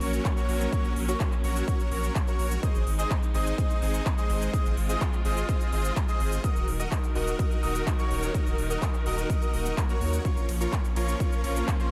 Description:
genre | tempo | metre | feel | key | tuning
EDM, festival progressive house | 126 BPM | 4/4 | straight | unclear | A4 = 441 Hz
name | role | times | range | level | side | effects
clear studio string section | sustained chords | 0.0-11.9 s | Eb3 to Bb4 | -37 LUFS | equal | vintage 12-bit sampler grit, sidechain pumping
bright grand piano | arpeggios | 0.0-11.9 s | C6 to Eb6 | -40 LUFS | equal | subtle chorus, sidechain pumping, tape echo
dense compressed supersaw | riff | 0.0-11.9 s | F4 to Eb5 | -36 LUFS | equal | sidechain pumping, tape echo
saturated sub bass | bass | 0.0-11.6 s | Eb1 to Eb2 | -32 LUFS | equal | sidechain pumping
big-room dance drum kit | drums | 0.0-11.9 s | handclaps, hi-hat, ride cymbal, shaker | -41 LUFS | equal | overdrive, small room reverb
electronic kick drum | drums | 0.2-11.8 s | none | -29 LUFS | equal | overdrive, small room reverb
swell | sound effects | 9.5-10.2 s | none | -45 LUFS | equal | none
room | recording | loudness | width
light reverb | none | -27 LUFS | mono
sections
0.0-11.9 A section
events
swell 9.5-10.2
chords
0.0 Gb/Bb; 2.6 Ab; 6.4 Ebm; 10.2 Bbm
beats
0.25 | 0.73 1.20 1.68 2.15 | 2.63 3.11 3.58 4.06 | 4.54 5.01 5.49 5.96 | 6.44 6.92 7.39 7.87 | 8.35 8.82 9.30 9.77 | 10.25 10.73 11.20 11.68

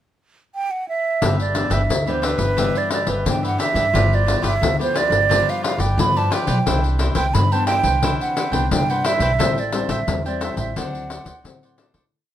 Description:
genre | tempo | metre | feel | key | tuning
samba and choro | 88 BPM | 4/4 | straight | G major | A4 = 441 Hz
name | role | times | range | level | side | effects
breathy hollow concert flute | melody | 0.6-11.8 s | B4 to B5 | -22 LUFS | right 4 dB | none
cavaquinho | accompaniment | 1.2-12.0 s | D4 to G5 | -28 LUFS | right 1 dB | none
nylon-string guitar | accompaniment | 1.2-12.1 s | G2 to E4 | -28 LUFS | left 4 dB | none
upright bass | bass | 1.2-12.1 s | G1 to D3 | -22 LUFS | equal | none
pandeiro | percussion | 1.2-12.1 s | none | -24 LUFS | left 4 dB | none
room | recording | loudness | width
moderate studio reverb, RT60 0.8 s | none | -17 LUFS | side -11 dB against mid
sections
0.0-1.2 pickup bar; 1.2-12.1 A section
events
fade-out 9.4-12.1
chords
0.0 N.C.; 1.2 G6; 6.7 Cmaj9; 9.4 Am7; 10.8 D9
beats
0.54 | 1.22 1.90 2.58 3.26 | 3.94 4.62 5.30 5.98 | 6.67 7.35 8.03 8.71 | 9.40 10.08 10.76 11.45

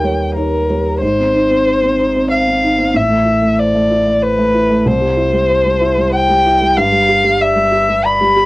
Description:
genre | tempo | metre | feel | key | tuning
neoclassical piano and strings | 94 BPM | 3/4 | rubato | unclear | A4 = 440 Hz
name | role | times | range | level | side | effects
muted violin | melody | 0.0-8.5 s | Bb4 to B5 | -13 LUFS | left 2 dB | cassette tape
felt-muted upright piano | accompaniment | 0.0-8.5 s | C2 to D5 | -16 LUFS | right 1 dB | cassette tape
punchy sub bass | bass | 0.0-8.5 s | G1 to Eb2 | -25 LUFS | equal | none
room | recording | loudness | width
moderate booth ambience, RT60 0.2 s | home recording on cassette | -11 LUFS | side -19 dB against mid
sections
0.0-1.0 A section; 1.0-8.5 B section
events
none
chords
0.0 Eb7; 1.0 Ab; 3.0 Am; 4.9 C; 6.8 G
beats
0.36 | 1.01 1.66 2.31 | 2.95 3.59 4.22 | 4.86 5.49 6.14 | 6.77 7.40 8.04

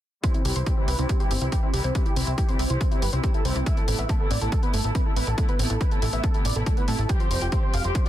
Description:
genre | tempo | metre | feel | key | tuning
uplifting trance | 140 BPM | 4/4 | straight | C major | A4 = 440 Hz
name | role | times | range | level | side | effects
dense compressed supersaw | melody | 0.2-8.1 s | C4 to G5 | -30 LUFS | right 1 dB | sidechain pumping, low-pass filter, ping-pong delay
muted studio string section | sustained chords | 0.2-8.1 s | C3 to G4 | -34 LUFS | left 2 dB | sidechain pumping, low-pass filter
analog pluck | arpeggios | 0.2-8.1 s | A3 to C5 | -35 LUFS | right 1 dB | chorus, sidechain pumping, ping-pong delay
electronic hi-hat | drums | 0.2-8.1 s | none | -34 LUFS | left 1 dB | overdrive, sidechain pumping on hats
electronic kick drum | drums | 0.2-8.0 s | none | -24 LUFS | equal | overdrive
plucky analog bass | bass | 0.5-7.9 s | F1 to A2 | -26 LUFS | equal | sidechain pumping
room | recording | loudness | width
digital ambience | dense, heavily limited modern master | -22 LUFS | side -13 dB against mid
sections
0.2-8.1 A section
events
filter sweep on synth pluck 0.2-8.1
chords
0.2 C; 3.7 Amadd9; 7.1 Fsus2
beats
| 0.24 0.67 1.09 1.52 | 1.95 2.38 2.81 3.24 | 3.67 4.09 4.52 4.95 | 5.38 5.81 6.24 6.67 | 7.09 7.52 7.95

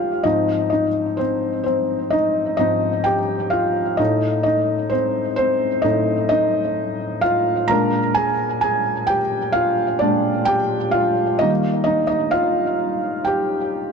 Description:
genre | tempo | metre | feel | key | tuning
pop | 65 BPM | 4/4 | straight | Ab major | A4 = 441 Hz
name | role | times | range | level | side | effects
felt-muted upright piano | solo | 0.0-13.9 s | Ab2 to Bb5 | -17 LUFS | equal | digital delay
room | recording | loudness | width
moderate plate reverb, RT60 3.1 s | dark, warm production | -17 LUFS | side -5 dB against mid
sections
0.2-13.9 A section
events
felt piano solo 0.2-13.9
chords
0.2 Ab6; 4.0 F7/A; 7.7 Bb7; 11.4 Ebadd9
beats
| 0.24 1.19 2.12 3.06 | 3.99 4.92 5.85 6.78 | 7.70 8.63 9.55 10.47 | 11.40 12.32 13.26

